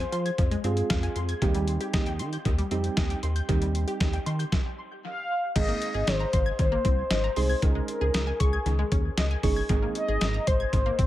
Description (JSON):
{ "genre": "synth-pop", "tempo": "116 BPM", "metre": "4/4", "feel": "straight", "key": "unclear", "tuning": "A4 = 442 Hz", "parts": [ { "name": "mellow horn-like synth lead", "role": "melody", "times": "0.0-1.1, 5.0-11.1 s", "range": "Ab4 to F5", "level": "-30 LUFS", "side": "left 2 dB", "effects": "chorus, dub echo" }, { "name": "wide unison pluck", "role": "arpeggios", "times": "0.0-11.1 s", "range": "Eb3 to Ab6", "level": "-35 LUFS", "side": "left 2 dB", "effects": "dub echo" }, { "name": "chorused synth bass", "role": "bass", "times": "0.0-11.1 s", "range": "G1 to F3", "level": "-28 LUFS", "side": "equal", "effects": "none" }, { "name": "dusty soul sampler-style drum kit", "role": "drums", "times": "0.0-11.1 s", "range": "crash cymbal, hi-hat, kick drum, snare drum", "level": "-27 LUFS", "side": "equal", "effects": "overdrive" }, { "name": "soft electric-piano-like synth keys", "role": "accompaniment", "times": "0.6-10.3 s", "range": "G3 to Ab4", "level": "-33 LUFS", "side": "right 5 dB", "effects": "chorus, dub echo" } ], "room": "light reverb", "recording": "echo-heavy mix", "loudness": "-24 LUFS", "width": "side -14 dB against mid", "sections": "0.0-5.6 A section; 5.6-11.1 B section", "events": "stop 4.5-5.6", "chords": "0.0 Fm; 1.4 Cm/Eb; 5.6 Abadd9; 7.6 Dbsus2; 9.7 Abadd9", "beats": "0.38 0.90 | 1.42 1.94 2.45 2.97 | 3.49 4.00 4.52 5.04 | 5.56 6.07 6.59 7.11 | 7.62 8.14 8.66 9.18 | 9.69 10.21 10.73" }